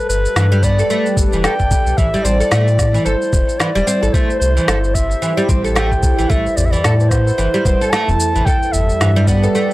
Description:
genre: organic downtempo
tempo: 111 BPM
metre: 4/4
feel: swing 58% on 16ths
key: A minor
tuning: A4 = 440 Hz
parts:
  - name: dark clarinet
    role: melody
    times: 0.0-9.7 s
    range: B4 to A5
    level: -20 LUFS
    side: equal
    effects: tape echo
  - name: warm analog pad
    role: sustained chords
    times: 0.0-9.7 s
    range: G3 to D5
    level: -23 LUFS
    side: right 1 dB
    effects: chorus, sidechain pumping
  - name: warm sub bass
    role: bass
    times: 0.1-9.5 s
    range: E1 to A2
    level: -16 LUFS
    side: equal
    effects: none
  - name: electronic shaker and snare drum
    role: drums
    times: 0.1-9.7 s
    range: none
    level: -22 LUFS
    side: equal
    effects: none
  - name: oud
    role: arpeggios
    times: 0.4-9.7 s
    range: E3 to A4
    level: -20 LUFS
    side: right 1 dB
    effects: tape echo
  - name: electronic kick drum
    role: drums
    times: 0.6-9.4 s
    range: none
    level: -17 LUFS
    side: equal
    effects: none
  - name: tabla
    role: percussion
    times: 6.5-9.5 s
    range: none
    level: -23 LUFS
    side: left 1 dB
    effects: none
room: little or no reverb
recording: dry, gritty hardware recording, transformer saturation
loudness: -13 LUFS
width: side -17 dB against mid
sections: 0.0-9.7 A section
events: none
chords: 0.0 Gadd9; 2.0 Am; 4.1 C; 6.3 Am; 8.5 Gadd9

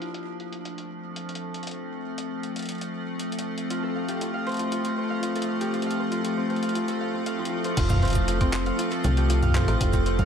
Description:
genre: IDM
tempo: 118 BPM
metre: 4/4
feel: straight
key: F major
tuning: A4 = 441 Hz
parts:
  - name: icy glass pad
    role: sustained chords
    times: 0.0-10.2 s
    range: F3 to A4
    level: -28 LUFS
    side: left 1 dB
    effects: chorus, built-in reverb
  - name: concert harp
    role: arpeggios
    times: 0.0-10.2 s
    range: C4 to F5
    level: -30 LUFS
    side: right 1 dB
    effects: ping-pong delay
  - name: jungle sampler-style drum kit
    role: drums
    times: 0.0-10.2 s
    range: cabasa, congas, crash cymbal, handclaps, hi-hat, rim click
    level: -34 LUFS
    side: equal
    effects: low-pass filter on hats, low-pass filter on snare, low-pass filter on perc, low-pass filter on cymbals, digital delay
  - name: metallic FM bass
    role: bass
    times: 7.8-10.2 s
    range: F1 to C2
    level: -24 LUFS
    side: equal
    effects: none
  - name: electronic kick drum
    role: drums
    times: 7.8-10.2 s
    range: none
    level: -24 LUFS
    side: equal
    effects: none
room: light reverb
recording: none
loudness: -24 LUFS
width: side -8 dB against mid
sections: 0.0-7.8 A section; 7.8-10.2 B section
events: none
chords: 0.0 F

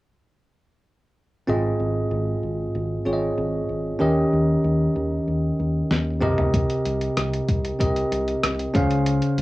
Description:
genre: 1980s-style pop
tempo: 95 BPM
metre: 4/4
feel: straight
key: Ab major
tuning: A4 = 444 Hz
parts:
  - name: bell-like tine electric piano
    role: accompaniment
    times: 1.5-9.4 s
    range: Ab2 to F5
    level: -22 LUFS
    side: equal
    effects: cassette tape
  - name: fingered electric bass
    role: bass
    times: 1.5-9.4 s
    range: Ab1 to Eb2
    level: -28 LUFS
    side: left 1 dB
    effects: none
  - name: lo-fi sampler-style drum kit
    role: drums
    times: 5.9-9.4 s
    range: hi-hat, kick drum, rim click, snare drum, toms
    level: -24 LUFS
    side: equal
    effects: cassette tape
room: moderate booth ambience, RT60 0.2 s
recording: home recording on cassette, small room ambience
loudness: -20 LUFS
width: side -18 dB against mid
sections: 1.5-9.4 A section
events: drum fill 5.9-6.5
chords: 1.5 Ab6; 4.0 Eb7; 6.2 Cm7; 8.7 Dbmaj7

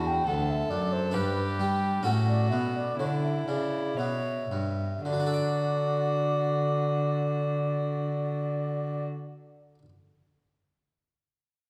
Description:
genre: classical, baroque-style sonata movement with continuo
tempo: 55-71 BPM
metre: 3/4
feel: straight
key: D major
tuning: A4 = 440 Hz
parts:
  - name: rich violin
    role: melody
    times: 0.0-9.0 s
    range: E4 to C#5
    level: -38 LUFS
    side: equal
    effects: none
  - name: mellow baroque flute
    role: second line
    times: 0.0-9.0 s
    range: B4 to G5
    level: -33 LUFS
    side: equal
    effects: none
  - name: harpsichord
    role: accompaniment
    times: 0.0-9.9 s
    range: D2 to D5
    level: -38 LUFS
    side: equal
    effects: none
  - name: dark cello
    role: bass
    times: 0.0-9.0 s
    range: D2 to G3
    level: -32 LUFS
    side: equal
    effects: none
room: wet recital hall reverb, RT60 1.5 s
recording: none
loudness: -28 LUFS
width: mono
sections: 0.0-5.0 A section; 5.0-8.3 B section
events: slowing down 0.0-5.0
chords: 0.0 D7; 1.1 G; 2.0 A7; 5.0 D

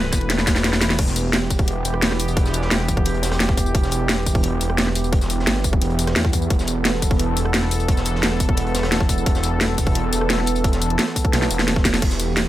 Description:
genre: dark technical drum and bass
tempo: 174 BPM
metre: 4/4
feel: straight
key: E minor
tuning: A4 = 440 Hz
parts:
  - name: sweeping resonant pad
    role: sustained chords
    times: 0.0-12.5 s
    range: E3 to B4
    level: -25 LUFS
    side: right 2 dB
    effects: chorus, sidechain pumping
  - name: wide detuned saw bass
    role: bass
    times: 0.0-12.5 s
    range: E1 to E2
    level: -22 LUFS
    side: equal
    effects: chorus
  - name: crunchy breakbeat drum kit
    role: drums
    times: 0.0-12.5 s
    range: hi-hat, snare drum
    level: -33 LUFS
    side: equal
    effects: none
  - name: drum and bass drum kit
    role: drums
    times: 0.1-12.4 s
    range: crash cymbal, hi-hat, ride cymbal, rim click, snare drum, tambourine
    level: -22 LUFS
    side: equal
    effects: overdrive
  - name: electronic kick drum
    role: drums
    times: 0.1-12.1 s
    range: none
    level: -20 LUFS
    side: equal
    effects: overdrive
room: little or no reverb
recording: none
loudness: -17 LUFS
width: side -14 dB against mid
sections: 1.0-12.5 A section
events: drum fill 0.3-1.0, 11.3-12.0; kick drops out 0.6-1.0; drop 1.0-12.5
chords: 0.0 E5; 1.0 Em

